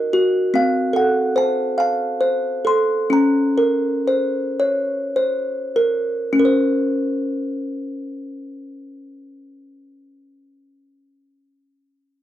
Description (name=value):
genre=children's music, lullaby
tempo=30-49 BPM (dotted quarters)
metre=6/8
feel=rubato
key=Bb harmonic minor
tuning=A4 = 440 Hz
part: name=music box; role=solo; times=0.0-10.6 s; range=C4 to C6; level=-18 LUFS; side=equal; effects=none
room=light reverb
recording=dry, close 1970s-style studio recording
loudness=-17 LUFS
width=side -12 dB against mid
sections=0.0-6.4 A section; 6.4-10.2 B section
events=slowing down 0.5-6.4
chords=0.0 Ebm; 0.5 F; 3.1 Bbmadd9